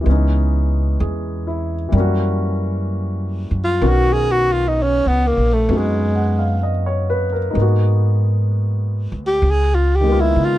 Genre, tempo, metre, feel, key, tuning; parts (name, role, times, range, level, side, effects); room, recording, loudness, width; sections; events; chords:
jazz ballad; 64 BPM; 4/4; swing 67% on 8ths; A4 = 440 Hz
warm grand piano; accompaniment; 0.0-10.6 s; D#3 to F#5; -23 LUFS; left 1 dB
upright bass; bass; 0.0-10.6 s; A#1 to Db3; -18 LUFS; equal
breathy tenor saxophone; melody; 3.6-10.6 s; Ab3 to Ab4; -17 LUFS; equal
little or no reverb; close, detailed microphones; -15 LUFS; side -14 dB against mid
0.0-10.6 A section
tenor saxophone solo 0.0-10.6
0.1 Dbm7; 1.9 Gb7b9; 3.8 Bmaj9; 7.5 Abm9; 9.4 Db13